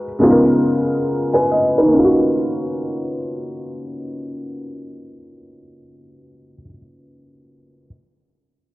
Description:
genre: hip hop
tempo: 70 BPM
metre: 4/4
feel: swing 62% on 16ths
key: Eb minor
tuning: A4 = 443 Hz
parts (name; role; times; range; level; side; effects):
- felt-muted upright piano; accompaniment; 0.0-7.9 s; Db3 to Ab5; -16 LUFS; equal; cassette tape, low-pass filter
room: light reverb, studio reverb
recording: dry, gritty hardware recording, cassette tape, low-pass filter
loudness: -14 LUFS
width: side -18 dB against mid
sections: 0.0-1.9 A section; 1.9-5.4 B section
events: filter sweep 0.0-1.9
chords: 0.2 Db13; 1.9 Ebm9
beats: 0.21 1.07 | 1.93 2.78 3.64 4.50

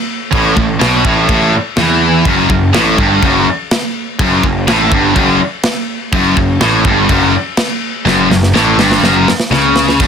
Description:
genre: heavy metal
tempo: 124 BPM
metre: 4/4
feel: straight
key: F# minor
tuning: A4 = 440 Hz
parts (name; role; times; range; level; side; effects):
- scooped high-gain guitar; riff; 0.3-10.1 s; F#2 to E3; -10 LUFS; equal; distortion
- fuzz picked electric bass; bass; 0.3-10.1 s; F#1 to E2; -17 LUFS; equal; overdrive
- tight metal drum kit; drums; 0.3-10.1 s; crash cymbal, kick drum, snare drum; -16 LUFS; equal; none
room: light reverb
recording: dense, heavily limited modern master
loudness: -9 LUFS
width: side -7 dB against mid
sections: 0.0-10.0 A section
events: drum fill 8.1-10.0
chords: 0.0 A5; 2.3 F#m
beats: | 0.33 0.81 1.29 1.77 | 2.26 2.74 3.22 3.71 | 4.19 4.67 5.16 5.64 | 6.12 6.61 7.09 7.58 | 8.06 8.54 9.03 9.51 | 10.00

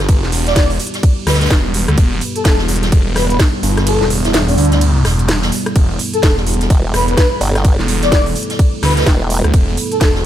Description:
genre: bass house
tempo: 127 BPM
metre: 4/4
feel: swing 60% on 16ths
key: E minor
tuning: A4 = 436 Hz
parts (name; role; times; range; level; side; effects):
- dark analog pad; sustained chords; 0.0-10.3 s; G3 to A4; -23 LUFS; right 1 dB; wide subtle chorus, sidechain pumping
- phased detuned saw bass; bass; 0.0-10.2 s; E1 to D2; -16 LUFS; equal; phaser, tube saturation, sidechain pumping
- electronic kick drum; drums; 0.1-10.1 s; none; -13 LUFS; equal; none
- garage drum kit; drums; 0.1-10.1 s; hi-hat, ride cymbal, rim click, snare drum; -20 LUFS; right 1 dB; none
- vintage brush drum kit; drums; 0.1-10.2 s; hi-hat, snare drum; -26 LUFS; right 2 dB; high-pass filter on hats, high-pass filter on snare, high-pass filter on room
- breathy flute-like synth lead; melody; 0.5-10.1 s; D4 to D5; -20 LUFS; left 1 dB; ensemble chorus, ping-pong delay
- formant-sweep wobble bass; bass; 6.7-9.4 s; E1 to G1; -16 LUFS; equal; chorus, tube saturation, sidechain pumping
room: digital ambience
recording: none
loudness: -12 LUFS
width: side -11 dB against mid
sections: 0.0-10.3 A section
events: kick drops out 3.9-5.8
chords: 0.0 Em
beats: | 0.09 0.56 1.03 1.50 | 1.98 2.45 2.92 3.39 | 3.87 4.34 4.81 5.28 | 5.76 6.23 6.70 7.17 | 7.65 8.12 8.59 9.06 | 9.54 10.01

